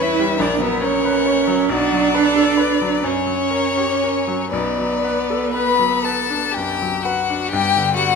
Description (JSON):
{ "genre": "classical, slow romantic movement for piano quartet", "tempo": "39-50 BPM (dotted quarters)", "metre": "6/8", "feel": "rubato", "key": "B minor", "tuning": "A4 = 440 Hz", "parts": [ { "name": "warm violin", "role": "melody", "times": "0.0-8.2 s", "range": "B4 to B5", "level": "-21 LUFS", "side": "left 9 dB", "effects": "none" }, { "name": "clear cello", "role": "second line", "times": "0.0-8.2 s", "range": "B3 to E4", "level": "-20 LUFS", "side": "right 9 dB", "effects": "none" }, { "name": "rich violin", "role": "second line", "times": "0.0-8.2 s", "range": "F#4 to D5", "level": "-24 LUFS", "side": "left 5 dB", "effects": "none" }, { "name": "bright grand piano", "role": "accompaniment", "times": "0.0-8.2 s", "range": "A#1 to C#5", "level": "-24 LUFS", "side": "left 2 dB", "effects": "none" } ], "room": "moderate recital hall reverb, RT60 1.8 s", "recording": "close, detailed microphones", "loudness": "-16 LUFS", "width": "side -5 dB against mid", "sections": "0.0-7.5 A section", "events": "none", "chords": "0.4 F#/A#; 1.7 Bm; 3.0 F#; 4.5 Bm; 7.5 G" }